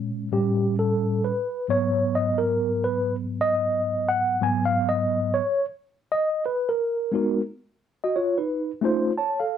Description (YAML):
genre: hip hop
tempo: 88 BPM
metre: 4/4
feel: swing 64% on 16ths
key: G# dorian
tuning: A4 = 440 Hz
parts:
  - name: mellow tine electric piano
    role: solo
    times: 0.0-9.6 s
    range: G#2 to A5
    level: -22 LUFS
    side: equal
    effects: medium stereo tremolo
room: moderate studio ambience, RT60 0.5 s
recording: dark, warm production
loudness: -22 LUFS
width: side -9 dB against mid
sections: 0.0-7.1 A section; 7.1-9.6 B section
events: tine electric piano solo 0.0-7.1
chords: 0.3 A7; 1.7 G#m7; 8.5 F7b13